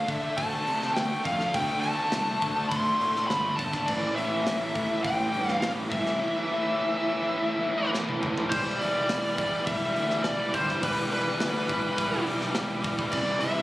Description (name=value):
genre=heavy metal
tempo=103 BPM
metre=4/4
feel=straight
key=E phrygian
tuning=A4 = 441 Hz
part: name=high-gain lead guitar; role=melody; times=0.0-13.6 s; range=B4 to C6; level=-28 LUFS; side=left 1 dB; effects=distortion, digital delay
part: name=high-gain distorted guitar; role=riff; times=0.0-13.6 s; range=A2 to A3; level=-29 LUFS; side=equal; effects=distortion
part: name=fuzz picked electric bass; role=bass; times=0.1-13.6 s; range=E1 to D3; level=-33 LUFS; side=equal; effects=overdrive
part: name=tight metal drum kit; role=drums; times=0.1-13.5 s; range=crash cymbal, hi-hat, kick drum, snare drum, toms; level=-35 LUFS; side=equal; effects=none
room=little or no reverb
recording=recorded on a phone in the room, club reverb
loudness=-25 LUFS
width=side -16 dB against mid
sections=0.0-8.5 A section; 8.5-13.6 A section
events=drum fill 7.9-8.5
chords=0.0 D5; 3.9 A5; 8.5 Em